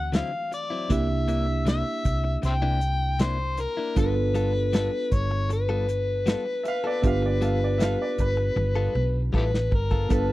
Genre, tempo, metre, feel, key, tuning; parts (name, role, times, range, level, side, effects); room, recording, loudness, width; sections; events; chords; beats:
straight-eighth soul blues; 78 BPM; 4/4; straight; G mixolydian; A4 = 440 Hz
overdriven harmonica; melody; 0.0-10.3 s; E4 to G5; -28 LUFS; left 2 dB
bright reed electric piano; accompaniment; 0.0-10.3 s; E3 to A4; -32 LUFS; right 5 dB
hollow-body short-scale fingered electric bass; bass; 0.0-10.3 s; G1 to D2; -26 LUFS; equal
direct-recorded clean electric guitar; stabs; 0.1-10.3 s; C3 to A4; -33 LUFS; left 3 dB
warm soul drum kit; drums; 0.1-10.3 s; hi-hat, kick drum, snare drum, toms; -26 LUFS; equal
warm upright piano; second line; 6.6-9.7 s; B4 to F5; -34 LUFS; right 4 dB
mellow horn section; sustained chords; 10.1-10.3 s; B3 to A5; -34 LUFS; right 3 dB
small room ambience; dry, close 1970s-style studio recording; -22 LUFS; side -17 dB against mid
0.0-10.1 A section
drum fill 8.6-10.1
0.0 D9; 0.9 C9; 4.0 G9
0.13 | 0.90 1.67 2.43 3.20 | 3.97 4.73 5.50 6.27 | 7.03 7.80 8.57 9.34 | 10.10